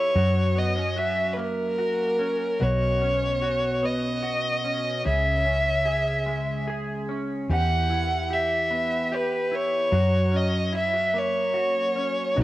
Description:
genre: pop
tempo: 49 BPM (dotted quarters)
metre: 6/8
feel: straight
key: unclear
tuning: A4 = 441 Hz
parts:
  - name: clear violin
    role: melody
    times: 0.0-12.4 s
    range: A#4 to F#5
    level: -24 LUFS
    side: equal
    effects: cassette tape, analog delay
  - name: direct-recorded clean electric guitar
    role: accompaniment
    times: 0.0-12.4 s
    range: B2 to G#4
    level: -29 LUFS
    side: equal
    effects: double-tracked left and right, cassette tape
  - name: vintage muted fingered electric bass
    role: bass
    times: 0.0-12.4 s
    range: B1 to F#2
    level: -26 LUFS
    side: equal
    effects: none
  - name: warm studio string section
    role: sustained chords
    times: 12.4 s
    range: C#3 to D#4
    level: -27 LUFS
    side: left 1 dB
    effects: cassette tape
room: moderate spring reverb, RT60 1.3 s, small room ambience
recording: home recording on cassette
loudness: -22 LUFS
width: side -16 dB against mid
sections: 0.0-12.4 A section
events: none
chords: 0.2 F#; 2.6 Badd9; 5.1 C#m; 7.5 Em; 9.9 F#

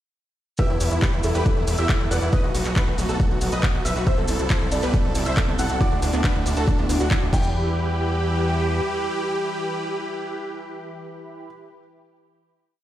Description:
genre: uplifting trance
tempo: 138 BPM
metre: 4/4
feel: straight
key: E minor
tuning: A4 = 441 Hz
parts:
  - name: supersaw chords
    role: melody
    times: 0.6-11.5 s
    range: D4 to F#5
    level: -28 LUFS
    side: right 1 dB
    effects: sidechain pumping, ping-pong delay
  - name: felt-muted upright piano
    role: second line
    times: 0.6-11.4 s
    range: A4 to G5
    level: -33 LUFS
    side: left 1 dB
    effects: ping-pong delay
  - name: warm grand piano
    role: second line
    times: 0.6-11.5 s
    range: D5 to F#6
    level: -36 LUFS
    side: equal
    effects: sidechain pumping, ping-pong delay
  - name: filtered supersaw swell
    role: sustained chords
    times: 0.6-11.5 s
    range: C3 to B5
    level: -32 LUFS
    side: equal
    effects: phaser, sidechain pumping
  - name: electronic kick drum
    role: drums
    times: 0.6-7.4 s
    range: none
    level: -22 LUFS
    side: equal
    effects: none
  - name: house drum kit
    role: drums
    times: 0.6-7.4 s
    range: crash cymbal, handclaps, hi-hat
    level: -31 LUFS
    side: left 1 dB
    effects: none
  - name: maracas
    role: percussion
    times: 0.6-7.5 s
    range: none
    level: -36 LUFS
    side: right 1 dB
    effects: none
  - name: gritty driven synth bass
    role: bass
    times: 0.7-8.8 s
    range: B1 to E2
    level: -24 LUFS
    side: equal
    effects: sidechain pumping
  - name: wide unison pluck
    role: arpeggios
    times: 4.1-7.7 s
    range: B3 to F#4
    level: -31 LUFS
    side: right 2 dB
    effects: sidechain pumping, ping-pong delay
room: digital ambience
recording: played on a big sound system in a bare room, stone room reverb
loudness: -20 LUFS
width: side -13 dB against mid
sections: 0.6-7.5 drop; 7.5-11.0 final hit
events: drop 0.6-7.5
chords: 0.6 Em; 2.3 B7; 4.1 Amadd9/C; 5.8 D; 7.3 Em

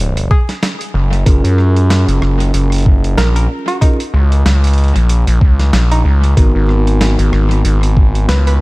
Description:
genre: glitch hop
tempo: 94 BPM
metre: 4/4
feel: swing 57% on 16ths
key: unclear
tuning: A4 = 440 Hz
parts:
  - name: gritty driven synth bass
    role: bass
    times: 0.0-8.6 s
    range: F#1 to F#2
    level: -11 LUFS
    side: equal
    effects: none
  - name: boom bap sampler-style drum kit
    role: drums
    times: 0.2-8.6 s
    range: hi-hat, rim click, snare drum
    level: -21 LUFS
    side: right 1 dB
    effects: analog delay
  - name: woody wave-folded pluck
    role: melody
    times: 0.3-8.6 s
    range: D#4 to B4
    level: -23 LUFS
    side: right 1 dB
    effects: chorus, analog delay
  - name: electronic kick drum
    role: drums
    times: 0.3-8.1 s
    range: none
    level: -10 LUFS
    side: equal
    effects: none
  - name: bell-like tine electric piano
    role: stabs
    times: 1.3-8.6 s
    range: B3 to A#4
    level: -19 LUFS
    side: equal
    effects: sidechain pumping, analog delay
room: little or no reverb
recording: echo-heavy mix, vinyl crackle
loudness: -10 LUFS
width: side -22 dB against mid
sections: 0.0-8.6 A section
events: none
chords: 0.0 G#7(no3); 1.3 F#maj9; 6.4 G#m7

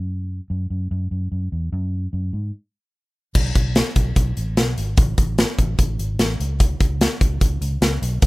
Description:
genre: jangly indie pop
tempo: 148 BPM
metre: 4/4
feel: straight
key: unclear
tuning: A4 = 439 Hz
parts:
  - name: vintage muted fingered electric bass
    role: bass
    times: 0.0-8.3 s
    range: G#1 to G#2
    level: -23 LUFS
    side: equal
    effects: none
  - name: big rock drum kit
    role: drums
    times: 3.4-8.3 s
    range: crash cymbal, hi-hat, kick drum, snare drum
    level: -18 LUFS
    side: equal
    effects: none
room: little or no reverb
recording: rough home demo mix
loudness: -18 LUFS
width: side -21 dB against mid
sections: 0.0-3.4 A section; 3.4-8.3 B section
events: stop 2.5-3.4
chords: none

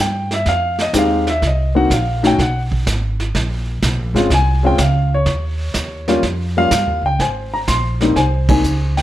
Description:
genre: jazz piano trio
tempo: 125 BPM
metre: 4/4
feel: swing 69% on 8ths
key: unclear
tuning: A4 = 442 Hz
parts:
  - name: warm grand piano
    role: melody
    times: 0.0-9.0 s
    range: G3 to C6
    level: -17 LUFS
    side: left 1 dB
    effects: none
  - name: upright bass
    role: bass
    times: 0.0-9.0 s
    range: Ab1 to G2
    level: -18 LUFS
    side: right 1 dB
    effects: none
  - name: vintage brush drum kit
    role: drums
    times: 0.3-9.0 s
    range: brushed snare drum, crash cymbal, hi-hat, kick drum, snare drum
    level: -22 LUFS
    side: right 2 dB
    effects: none
room: light reverb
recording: none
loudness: -14 LUFS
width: side -13 dB against mid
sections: 0.0-7.2 A section; 7.2-9.0 B section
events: grand piano solo 0.0-7.2; band accent 8.4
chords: 0.0 Fm7; 1.4 Cm7b5; 2.4 Abm; 3.3 Bbm9; 5.3 Eb7; 7.2 Abadd9

